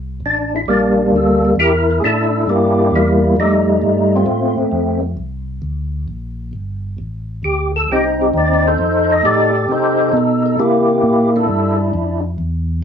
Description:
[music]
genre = soul jazz organ trio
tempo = 133 BPM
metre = 4/4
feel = swing 67% on 8ths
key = C major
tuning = A4 = 440 Hz
[part]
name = mellow tonewheel organ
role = bass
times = 0.0-12.8 s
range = G1 to C3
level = -20 LUFS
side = equal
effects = chorus vibrato, slow rotary speaker
[part]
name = percussive tonewheel organ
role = melody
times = 0.3-12.2 s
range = G3 to Eb5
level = -14 LUFS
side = equal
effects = slow rotary speaker, chorus vibrato
[sound]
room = moderate club reverb, RT60 0.5 s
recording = none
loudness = -13 LUFS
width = side -7 dB against mid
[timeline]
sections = 0.0-12.8 A section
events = none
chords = 0.0 C9 (rootless); 3.4 F9; 5.2 Csus2; 7.0 F9; 10.6 C9

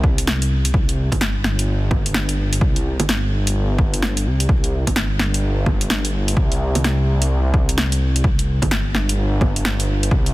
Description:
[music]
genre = future garage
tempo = 128 BPM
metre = 4/4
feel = swing 62% on 16ths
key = unclear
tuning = A4 = 444 Hz
[part]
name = swelling detuned saw bass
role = bass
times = 0.0-10.3 s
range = G1 to C2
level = -19 LUFS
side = equal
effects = sidechain pumping
[part]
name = electronic kick drum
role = drums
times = 0.0-10.2 s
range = none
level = -19 LUFS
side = equal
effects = overdrive
[part]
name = deep house drum kit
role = drums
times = 0.2-10.3 s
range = bongos, hi-hat, snare drum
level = -23 LUFS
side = equal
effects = overdrive
[sound]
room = digital ambience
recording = dense, heavily limited modern master, vinyl crackle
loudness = -16 LUFS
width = side -18 dB against mid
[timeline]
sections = 0.0-10.3 A section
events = none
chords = none

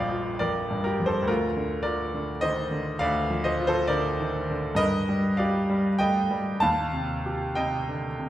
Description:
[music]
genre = classical, romantic nocturne for solo piano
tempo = 63-71 BPM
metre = 4/4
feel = rubato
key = Bb major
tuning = A4 = 441 Hz
[part]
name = clear baby grand piano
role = solo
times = 0.0-8.3 s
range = Bb1 to A5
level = -24 LUFS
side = equal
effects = none
[sound]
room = wet recital hall reverb, RT60 1.4 s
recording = heard from further back in the room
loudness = -24 LUFS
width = side -13 dB against mid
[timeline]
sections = 0.0-8.3 A section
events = none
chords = 0.0 Bb; 1.3 Bb/D; 4.8 Gm; 6.6 Cm/Eb

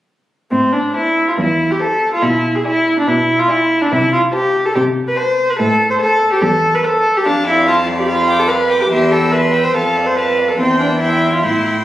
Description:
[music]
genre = quick classical-period movement for string quartet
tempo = 143 BPM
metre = 4/4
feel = rubato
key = A minor, C major from 7.3 s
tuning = A4 = 435 Hz
[part]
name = rich viola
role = accompaniment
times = 0.5-11.7 s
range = C4 to C5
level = -13 LUFS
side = equal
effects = none
[part]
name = dark cello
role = bass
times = 0.5-11.8 s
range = E2 to C3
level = -20 LUFS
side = right 1 dB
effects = none
[part]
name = warm violin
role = melody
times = 0.9-11.8 s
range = F5 to E6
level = -26 LUFS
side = left 5 dB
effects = none
[part]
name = rich violin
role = second line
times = 1.0-11.8 s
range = C5 to G5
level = -25 LUFS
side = left 2 dB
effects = none
[sound]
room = moderate scoring stage reverb, RT60 2.0 s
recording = recorded on a phone in the room, club reverb, compression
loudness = -12 LUFS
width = side -14 dB against mid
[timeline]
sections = 0.5-11.8 A section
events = none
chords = 0.5 Am; 2.2 E7/B; 3.9 Am/C; 5.6 Am; 7.3 Dm/F; 8.1 G7/F; 8.9 C/E; 9.8 Dm/F; 10.6 C/E

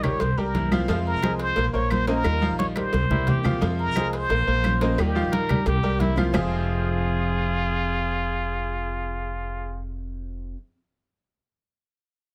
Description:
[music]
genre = latin, Cuban son and guajira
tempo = 176 BPM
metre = 4/4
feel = straight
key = F minor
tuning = A4 = 438 Hz
[part]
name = trumpet with plunger mute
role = melody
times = 0.0-9.8 s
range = F4 to Db5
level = -30 LUFS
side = equal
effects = none
[part]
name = nylon-string guitar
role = accompaniment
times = 0.0-10.6 s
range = F2 to C5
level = -33 LUFS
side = equal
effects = none
[part]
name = bright grand piano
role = arpeggios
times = 0.0-10.5 s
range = F3 to F5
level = -31 LUFS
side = equal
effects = none
[part]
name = upright bass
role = bass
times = 0.0-10.5 s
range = F1 to F2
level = -30 LUFS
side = equal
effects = none
[part]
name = claves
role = percussion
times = 0.0-6.4 s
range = none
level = -39 LUFS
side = equal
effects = none
[part]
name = congas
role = percussion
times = 0.0-6.4 s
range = none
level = -30 LUFS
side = equal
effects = none
[part]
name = cowbell and bongos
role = percussion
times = 0.0-6.4 s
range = none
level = -36 LUFS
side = equal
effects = none
[part]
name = warm trumpet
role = second line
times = 3.1-9.8 s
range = E4 to Bb4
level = -34 LUFS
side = equal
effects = none
[sound]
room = light reverb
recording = close, detailed microphones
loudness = -24 LUFS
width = mono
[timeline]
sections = 0.0-3.6 A section; 3.6-6.3 B section; 6.3-9.1 C section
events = drum fill 2.8-3.6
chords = 0.2 C7; 0.9 Fm; 1.6 Bbmadd9; 2.3 Ebadd9; 2.9 C7; 3.6 Fm; 4.3 Bbmadd9; 5.0 Ebadd9; 5.7 C7; 6.3 Fm

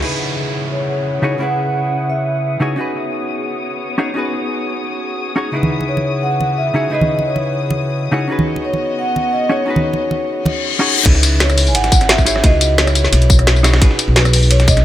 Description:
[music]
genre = liquid drum and bass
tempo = 174 BPM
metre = 4/4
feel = straight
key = C# minor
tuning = A4 = 440 Hz
[part]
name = hollow-body jazz guitar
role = accompaniment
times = 0.0-14.8 s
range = C#3 to C#5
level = -20 LUFS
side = equal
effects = digital delay
[part]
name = dark chamber string section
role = sustained chords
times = 0.0-11.0 s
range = C#3 to D#6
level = -25 LUFS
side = left 3 dB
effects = sidechain pumping, low-pass filter
[part]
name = drum and bass drum kit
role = drums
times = 0.0-0.1, 11.1-14.8 s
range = crash cymbal, hi-hat, rim click, snare drum, tambourine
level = -17 LUFS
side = left 1 dB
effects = none
[part]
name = downlifter and reverse cymbal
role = sound effects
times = 0.0-2.8, 10.5-11.1 s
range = none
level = -21 LUFS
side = left 6 dB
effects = none
[part]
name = vibraphone with soft mallets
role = melody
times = 0.7-2.6, 5.9-14.8 s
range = B4 to G#5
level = -21 LUFS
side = equal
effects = dub echo
[part]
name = congas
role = percussion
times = 5.6-10.5 s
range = none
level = -19 LUFS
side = right 2 dB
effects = none
[part]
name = upright bass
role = bass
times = 11.1-14.8 s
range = G#1 to C#2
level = -14 LUFS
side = equal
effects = none
[part]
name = dusty soul sampler-style drum kit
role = drums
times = 11.1-14.8 s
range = hi-hat, ride cymbal, snare drum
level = -22 LUFS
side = right 1 dB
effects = high-pass filter on cymbals, high-pass filter on snare, high-pass filter on hats, high-pass filter on room
[part]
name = electronic kick drum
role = drums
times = 11.1-14.8 s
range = none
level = -12 LUFS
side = equal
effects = none
[sound]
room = light reverb, digital ambience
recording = none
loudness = -13 LUFS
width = side -12 dB against mid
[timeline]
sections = 0.0-11.1 A section; 11.1-14.8 B section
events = reverse cymbal 10.5-11.1; drop 11.1-14.8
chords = 0.0 C#m11; 2.8 B69; 5.5 C#m11; 8.3 B69; 11.1 C#m11; 13.8 B69

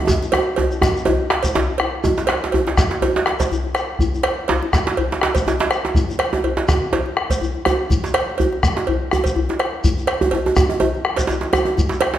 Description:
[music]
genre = west african traditional, West African drum ensemble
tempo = 123 BPM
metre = 4/4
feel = swing 54% on 16ths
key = none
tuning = none
[part]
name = bombo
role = percussion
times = 0.1-12.1 s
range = none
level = -21 LUFS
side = left 1 dB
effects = none
[part]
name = djembe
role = percussion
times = 0.1-12.0 s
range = none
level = -25 LUFS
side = left 4 dB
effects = none
[part]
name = djembe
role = percussion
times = 0.1-12.2 s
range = none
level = -20 LUFS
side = right 3 dB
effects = none
[part]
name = shekere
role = percussion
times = 0.1-12.0 s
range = none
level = -28 LUFS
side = left 2 dB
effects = none
[part]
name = cowbell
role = percussion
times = 0.3-12.1 s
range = none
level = -25 LUFS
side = right 4 dB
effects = none
[sound]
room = wet recital hall reverb, RT60 1.3 s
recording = none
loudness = -16 LUFS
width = side -11 dB against mid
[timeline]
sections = 0.0-2.0 A section; 2.0-12.2 B section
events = drum fill 0.1-2.0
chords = none

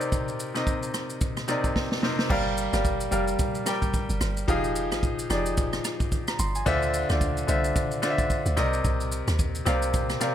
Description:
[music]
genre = amapiano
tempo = 110 BPM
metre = 4/4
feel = swing 58% on 16ths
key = G phrygian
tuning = A4 = 438 Hz
[part]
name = clear concert grand piano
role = accompaniment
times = 0.0-10.3 s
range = C3 to C6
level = -26 LUFS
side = left 1 dB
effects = none
[part]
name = swinging big-band drum kit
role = drums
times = 0.0-10.3 s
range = crash cymbal, kick drum, rim click, shaker, snare drum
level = -28 LUFS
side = equal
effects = none
[part]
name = deep log drum bass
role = bass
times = 2.3-10.2 s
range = F1 to Eb2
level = -28 LUFS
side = equal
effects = none
[sound]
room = small room ambience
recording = none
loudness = -24 LUFS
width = side -10 dB against mid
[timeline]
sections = 0.0-2.3 A section; 2.3-10.3 B section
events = drum fill 1.8-2.3; drop 2.3-10.3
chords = 0.0 Cm7; 2.3 Gm7; 4.5 Fm7; 6.7 Dm7; 8.6 Cm7

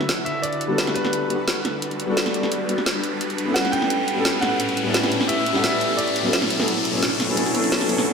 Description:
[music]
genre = liquid drum and bass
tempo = 173 BPM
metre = 4/4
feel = straight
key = unclear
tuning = A4 = 440 Hz
[part]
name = bright grand piano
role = melody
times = 0.0-1.4, 3.5-8.0 s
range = B4 to G5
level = -27 LUFS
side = right 2 dB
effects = ping-pong delay
[part]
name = shimmering ambient pad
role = sustained chords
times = 0.0-8.0 s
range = A2 to C#6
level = -28 LUFS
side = equal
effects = chorus, built-in reverb
[part]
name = drum and bass drum kit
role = drums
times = 0.0-8.1 s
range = hi-hat, snare drum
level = -24 LUFS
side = equal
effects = none
[part]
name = riser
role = sound effects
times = 0.6-8.1 s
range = none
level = -28 LUFS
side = left 2 dB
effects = none
[part]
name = felt-muted upright piano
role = accompaniment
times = 0.7-8.1 s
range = F#3 to A4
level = -24 LUFS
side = left 1 dB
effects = lush chorus, analog delay
[sound]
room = wet lush hall reverb, RT60 1.8 s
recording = dreamy mix soaked in reverb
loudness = -19 LUFS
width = side -5 dB against mid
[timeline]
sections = 0.0-8.1 A section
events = build-up 0.0-8.1; riser 0.6-8.1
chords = 0.4 Gmaj9; 3.0 A9; 6.0 Bm7

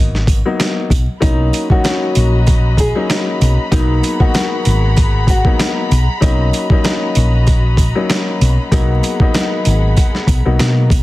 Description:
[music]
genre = hip hop, boom-bap hip-hop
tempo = 96 BPM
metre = 4/4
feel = swing 55% on 16ths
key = unclear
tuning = A4 = 443 Hz
[part]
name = dark upright piano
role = accompaniment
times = 0.0-10.9 s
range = F#3 to D#4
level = -20 LUFS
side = left 3 dB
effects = high-pass filter, low-pass filter
[part]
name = hollow-body short-scale fingered electric bass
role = bass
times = 0.0-11.0 s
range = G#1 to B2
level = -13 LUFS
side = equal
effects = none
[part]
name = boom bap sampler-style drum kit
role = drums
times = 0.1-11.0 s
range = hi-hat, kick drum, snare drum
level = -15 LUFS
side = equal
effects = none
[part]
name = sleigh bells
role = percussion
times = 0.3-11.0 s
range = none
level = -33 LUFS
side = right 8 dB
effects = none
[part]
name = nylon-string guitar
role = melody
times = 1.2-5.6 s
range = D#4 to G#4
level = -22 LUFS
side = left 1 dB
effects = high-pass filter, low-pass filter, ping-pong delay
[part]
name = warm studio string section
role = sustained chords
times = 1.2-11.0 s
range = F#4 to B5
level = -24 LUFS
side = left 1 dB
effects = high-pass filter, low-pass filter
[sound]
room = small room ambience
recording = dense, heavily limited modern master, vinyl crackle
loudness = -12 LUFS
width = side -18 dB against mid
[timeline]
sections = 0.0-11.0 A section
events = none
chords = 0.0 G#m9; 1.2 Bmaj7; 3.7 G#m9; 6.2 Bmaj7; 8.7 G#m9

